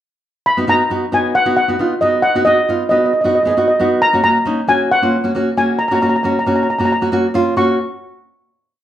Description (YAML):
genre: calypso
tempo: 135 BPM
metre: 4/4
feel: straight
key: F# major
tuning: A4 = 440 Hz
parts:
  - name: steel pan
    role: melody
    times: 0.5-7.8 s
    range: D#5 to C#6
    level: -15 LUFS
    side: equal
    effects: none
  - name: nylon-string guitar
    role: accompaniment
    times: 0.6-7.8 s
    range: A#3 to G#4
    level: -16 LUFS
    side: right 1 dB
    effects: none
room: moderate large studio reverb, RT60 0.9 s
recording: band playing live in one room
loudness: -13 LUFS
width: side -11 dB against mid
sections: 0.5-7.6 verse; 7.6-8.8 final chord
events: none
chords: 0.5 B; 4.0 F#